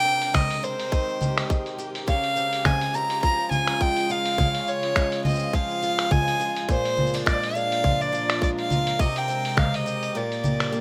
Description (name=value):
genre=folktronica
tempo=104 BPM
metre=4/4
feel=swing 56% on 16ths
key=unclear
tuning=A4 = 438 Hz
part: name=rich violin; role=melody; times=0.0-10.8 s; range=C5 to Bb5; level=-27 LUFS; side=equal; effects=tape echo, plate reverb
part: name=dark string quartet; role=sustained chords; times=0.0-10.8 s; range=Bb2 to Bb4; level=-37 LUFS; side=equal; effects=none
part: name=picked twelve-string acoustic guitar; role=arpeggios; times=0.0-10.8 s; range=Bb2 to G4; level=-32 LUFS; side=equal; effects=none
part: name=lo-fi sampler-style drum kit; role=drums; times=0.2-10.8 s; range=cabasa, congas, finger snaps, hi-hat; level=-30 LUFS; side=equal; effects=none
part: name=electronic kick drum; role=drums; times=0.3-9.7 s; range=none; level=-26 LUFS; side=equal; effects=overdrive
room=light reverb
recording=rough home demo mix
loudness=-24 LUFS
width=mono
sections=0.0-10.8 A section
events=kick drops out 10.2-10.8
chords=0.0 Abmaj7/C; 2.1 Dbmaj7; 6.7 Bb7; 9.0 Abmaj7/C; 10.2 Bb6